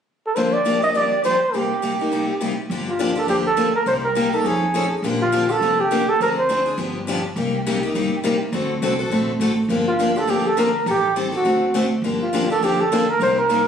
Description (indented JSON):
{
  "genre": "acoustic string swing (jazz manouche)",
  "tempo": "206 BPM",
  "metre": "4/4",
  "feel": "swing 58% on 8ths",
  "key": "G minor",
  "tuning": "A4 = 440 Hz",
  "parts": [
    { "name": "warm flugelhorn", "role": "melody", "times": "0.3-6.8, 9.9-13.7 s", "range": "F4 to Eb5", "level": "-19 LUFS", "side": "right 2 dB", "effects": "none" },
    { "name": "picked steel-string acoustic guitar", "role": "accompaniment", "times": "0.4-13.6 s", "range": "G2 to A4", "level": "-21 LUFS", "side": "left 3 dB", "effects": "none" },
    { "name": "upright bass", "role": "bass", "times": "2.7-13.7 s", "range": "F1 to F2", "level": "-29 LUFS", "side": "right 2 dB", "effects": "none" }
  ],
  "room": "wet small room reverb, RT60 0.5 s",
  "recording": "recorded on a phone in the room, studio reverb",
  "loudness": "-18 LUFS",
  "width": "side -8 dB against mid",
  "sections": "0.4-2.7 A section; 2.7-12.0 B section; 12.0-13.7 B section",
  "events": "none",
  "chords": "0.4 Gm7; 1.5 Cm7; 2.7 Gm7; 3.9 Cm7; 4.4 F7alt; 5.0 Bb6; 6.2 Dm7b5; 6.8 G7; 7.4 Cm7; 8.5 D7; 9.7 Gm7; 10.9 Am7b5; 11.4 D7; 12.0 Gm7"
}